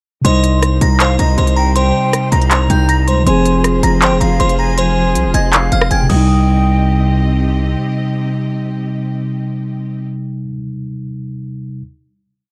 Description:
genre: hip hop, trap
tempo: 159 BPM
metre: 4/4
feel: half-time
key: C minor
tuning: A4 = 441 Hz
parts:
  - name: delicate synth tine bell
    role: melody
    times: 0.2-7.4 s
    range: C5 to Bb6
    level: -21 LUFS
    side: equal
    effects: chorus, phaser, tremolo
  - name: mellow jazz flute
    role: second line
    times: 0.2-7.4 s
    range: Eb5 to Bb5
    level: -25 LUFS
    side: equal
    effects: tape echo
  - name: mellow tine electric piano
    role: accompaniment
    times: 0.2-11.8 s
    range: C3 to Ab4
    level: -20 LUFS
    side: equal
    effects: none
  - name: clear symphonic string section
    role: sustained chords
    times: 0.2-10.1 s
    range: C3 to Eb5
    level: -26 LUFS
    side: equal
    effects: none
  - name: distorted 808-style bass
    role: bass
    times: 0.2-7.8 s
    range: F1 to Db2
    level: -17 LUFS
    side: equal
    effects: distortion
  - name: trap drum kit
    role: drums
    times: 0.2-6.2 s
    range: crash cymbal, handclaps, hi-hat, rim click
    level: -19 LUFS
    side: equal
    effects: none
room: little or no reverb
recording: dark, warm production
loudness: -14 LUFS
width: mono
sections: 0.2-6.3 hook; 6.3-9.3 final hit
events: none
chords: 0.2 Cm; 3.3 Fm; 6.1 Cm

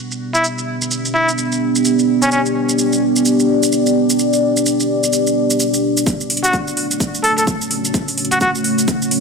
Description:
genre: bass house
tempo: 128 BPM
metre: 4/4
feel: swing 60% on 16ths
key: F# phrygian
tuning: A4 = 440 Hz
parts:
  - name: deep dark ambient pad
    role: sustained chords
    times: 0.0-9.2 s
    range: A3 to D5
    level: -16 LUFS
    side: equal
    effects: chorus, built-in reverb, sidechain pumping
  - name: electronic shaker and hi-hat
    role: drums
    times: 0.1-9.2 s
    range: none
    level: -21 LUFS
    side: right 2 dB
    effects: low-pass filter on perc, low-pass filter on hats, low-pass filter on room
  - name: trumpet with straight mute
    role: melody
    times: 0.3-2.4, 6.4-8.5 s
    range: C#4 to A4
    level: -19 LUFS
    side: equal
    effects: tape echo
  - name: electronic kick drum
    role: drums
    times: 6.1-9.0 s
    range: none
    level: -20 LUFS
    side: equal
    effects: high-pass filter on kick, high-pass filter on room
room: wet lush hall reverb, RT60 2.3 s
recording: none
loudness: -14 LUFS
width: side -4 dB against mid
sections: 0.0-6.1 A section; 6.1-9.2 B section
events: filter sweep on ambient pad 0.0-6.1; build-up 6.1-9.2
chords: 0.0 G; 6.1 F#m

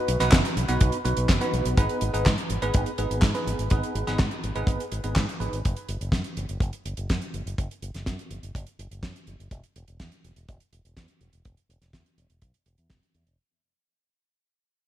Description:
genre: italo disco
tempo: 124 BPM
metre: 4/4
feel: straight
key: unclear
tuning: A4 = 442 Hz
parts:
  - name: bell-like tine electric piano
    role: stabs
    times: 0.0-5.6 s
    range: B3 to B4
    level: -28 LUFS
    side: right 2 dB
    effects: phaser, ping-pong delay, shimmer reverb
  - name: fingered electric bass with an envelope filter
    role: bass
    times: 0.1-13.3 s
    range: E1 to G#2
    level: -29 LUFS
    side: equal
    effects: none
  - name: damped 70s drum kit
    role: drums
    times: 0.1-13.4 s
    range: handclaps, hi-hat, snare drum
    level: -28 LUFS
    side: right 1 dB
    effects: small room ambience, gated reverb
  - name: kick drum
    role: drums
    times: 0.3-13.0 s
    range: none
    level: -23 LUFS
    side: equal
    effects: small room ambience
room: light reverb, studio ambience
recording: bright 1980s-style digital production, vinyl crackle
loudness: -23 LUFS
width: side -12 dB against mid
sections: 0.0-13.4 A section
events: fade-out 0.0-13.4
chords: 0.0 B; 1.8 G#m; 5.6 N.C.; 9.5 E5

